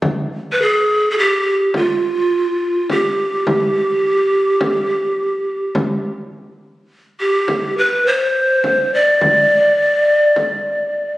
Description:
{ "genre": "Arabic maqam ensemble", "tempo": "104 BPM (eighths)", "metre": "10/8", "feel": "straight", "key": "G maqam hijaz", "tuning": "A4 = 440 Hz", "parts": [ { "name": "frame drum", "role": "percussion", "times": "0.0-10.6 s", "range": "none", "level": "-22 LUFS", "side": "left 1 dB", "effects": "none" }, { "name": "breathy hollow large pan pipes", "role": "melody", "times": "0.5-11.2 s", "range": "F4 to D5", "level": "-14 LUFS", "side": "equal", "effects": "none" } ], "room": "wet scoring stage reverb, RT60 1.6 s", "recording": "recorded on a phone in the room, studio reverb", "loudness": "-14 LUFS", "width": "side -16 dB against mid", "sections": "0.0-11.2 A section", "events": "none", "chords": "none" }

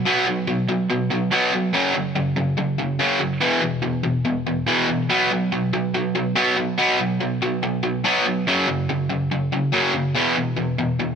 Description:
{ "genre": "rock", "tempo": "143 BPM", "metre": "4/4", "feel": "straight", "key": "unclear", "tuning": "A4 = 441 Hz", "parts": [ { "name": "cranked stack guitar", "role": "solo", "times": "0.0-11.2 s", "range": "E2 to B3", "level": "-19 LUFS", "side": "equal", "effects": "overdrive" } ], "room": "light reverb", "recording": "none", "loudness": "-19 LUFS", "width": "side -7 dB against mid", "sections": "0.0-11.2 A section", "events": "none", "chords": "0.0 B5; 1.7 F#5; 3.4 E5; 5.1 B5; 8.5 F#5; 10.2 E5" }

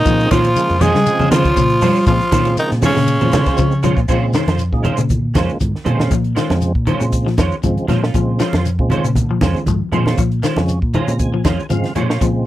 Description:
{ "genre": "afrobeat", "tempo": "118 BPM", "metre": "4/4", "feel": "swing 53% on 16ths", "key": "Bb minor", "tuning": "A4 = 441 Hz", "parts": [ { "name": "growling tenor saxophone", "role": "melody", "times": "0.0-3.8 s", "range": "Db4 to Ab4", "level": "-18 LUFS", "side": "equal", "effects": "none" }, { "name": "bright alto saxophone", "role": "second line", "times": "0.0-3.8 s", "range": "Db3 to Ab3", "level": "-21 LUFS", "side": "right 2 dB", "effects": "none" }, { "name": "fingered electric bass", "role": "bass", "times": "0.0-12.4 s", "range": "F2 to G3", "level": "-18 LUFS", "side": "equal", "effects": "none" }, { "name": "percussive tonewheel organ", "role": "accompaniment", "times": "0.1-12.5 s", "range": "Db3 to Bb5", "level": "-23 LUFS", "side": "right 2 dB", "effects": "slow rotary speaker, overdrive, chorus vibrato" }, { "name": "electric guitar at the edge of break-up", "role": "arpeggios", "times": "0.1-12.4 s", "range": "Db3 to F3", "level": "-22 LUFS", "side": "left 7 dB", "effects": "phaser" }, { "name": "compact cocktail drum kit", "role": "drums", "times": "0.1-12.3 s", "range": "crash cymbal, hi-hat, kick drum, ride cymbal, snare drum", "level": "-21 LUFS", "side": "equal", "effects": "none" }, { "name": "shekere", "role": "percussion", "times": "0.1-12.3 s", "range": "none", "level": "-27 LUFS", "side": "left 5 dB", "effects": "none" }, { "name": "clean electric guitar", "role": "stabs", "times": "0.3-12.2 s", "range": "Ab3 to C5", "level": "-23 LUFS", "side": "right 5 dB", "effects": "ensemble chorus" }, { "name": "congas", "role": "percussion", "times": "0.3-12.1 s", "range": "none", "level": "-21 LUFS", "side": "right 2 dB", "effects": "none" } ], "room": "little or no reverb", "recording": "dry, close 1970s-style studio recording", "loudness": "-13 LUFS", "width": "side -14 dB against mid", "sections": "0.0-4.1 A section; 4.1-12.5 B section", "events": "tonewheel organ fill 10.7-12.2", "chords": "0.0 Bbm9" }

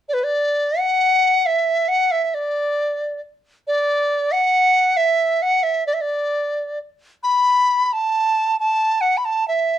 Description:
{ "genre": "chinese traditional", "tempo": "67 BPM", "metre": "2/4", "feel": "rubato", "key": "D gong mode", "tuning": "A4 = 440 Hz", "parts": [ { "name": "bright large dizi", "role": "melody", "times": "0.1-9.8 s", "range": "B4 to B5", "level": "-16 LUFS", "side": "equal", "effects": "none" } ], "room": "moderate small room reverb, RT60 0.5 s", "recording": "dark, warm production", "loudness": "-16 LUFS", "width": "side -11 dB against mid", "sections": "0.1-9.8 A section", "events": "none", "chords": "none" }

